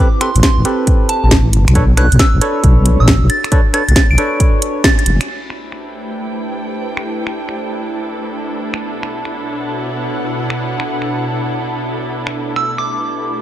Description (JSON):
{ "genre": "UK garage, two-step garage", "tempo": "136 BPM", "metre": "4/4", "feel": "swing 66% on 16ths", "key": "unclear", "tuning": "A4 = 440 Hz", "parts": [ { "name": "soft synth bell", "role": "melody", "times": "0.0-5.0, 12.6-13.2 s", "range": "A5 to D7", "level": "-20 LUFS", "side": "right 2 dB", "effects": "chorus, tape echo" }, { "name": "ethereal airy pad", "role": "sustained chords", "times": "0.1-13.4 s", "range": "B2 to G#5", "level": "-25 LUFS", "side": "equal", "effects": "ensemble chorus, built-in reverb, sidechain pumping" }, { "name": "percussive organ stab", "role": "stabs", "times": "0.0-4.8 s", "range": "C4 to C#5", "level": "-20 LUFS", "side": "equal", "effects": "chorus, tape echo" }, { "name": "house drum kit", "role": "drums", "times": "0.2-12.9 s", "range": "crash cymbal, finger snaps, hi-hat, snare drum", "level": "-17 LUFS", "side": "equal", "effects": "low-pass filter on snare, low-pass filter on hats, low-pass filter on cymbals" }, { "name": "deep soft wobble bass", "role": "bass", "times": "0.4-5.2 s", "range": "F#1 to B1", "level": "-11 LUFS", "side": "equal", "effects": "chorus" }, { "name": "electronic kick drum", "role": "drums", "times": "0.4-5.0 s", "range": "none", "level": "-13 LUFS", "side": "equal", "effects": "none" }, { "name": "muted chamber string section", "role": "texture", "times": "5.3-13.4 s", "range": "B3 to G5", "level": "-23 LUFS", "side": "equal", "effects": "sidechain pumping" } ], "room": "light reverb", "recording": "faint mains hum", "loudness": "-13 LUFS", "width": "side -13 dB against mid", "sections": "0.0-5.3 A section; 5.3-13.4 B section", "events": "band accent 4.8", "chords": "0.0 Am9; 1.8 Bm9; 5.3 Am9; 8.8 Bm9; 12.3 Asus2", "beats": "0.43 0.87 1.31 | 1.75 2.19 2.64 3.08 | 3.52 3.96 4.40 4.84 | 5.28 5.72 6.17 6.61 | 7.05 7.49 7.93 8.37 | 8.81 9.25 9.70 10.14 | 10.58 11.02 11.46 11.90 | 12.34 12.78 13.22" }